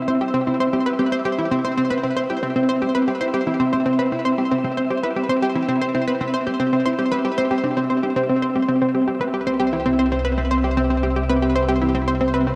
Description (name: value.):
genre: ambient, sequencer-driven space music.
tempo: 115 BPM.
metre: 4/4.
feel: straight.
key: C major.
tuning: A4 = 439 Hz.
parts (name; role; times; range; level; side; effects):
analog pluck; riff; 0.0-12.6 s; C4 to C5; -24 LUFS; equal; chorus, delay.
wind-like tuned noise texture; texture; 0.0-12.6 s; E5; -36 LUFS; equal; built-in reverb.
mellow electric guitar; arpeggios; 0.1-12.6 s; C4 to C5; -24 LUFS; equal; delay.
analog drone; bass; 9.7-12.6 s; C2; -27 LUFS; equal; chorus.
room: wet lush hall reverb, RT60 2.7 s.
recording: dark, warm production.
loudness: -20 LUFS.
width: mono.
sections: 0.0-12.6 A section.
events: none.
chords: 0.0 Cmaj7.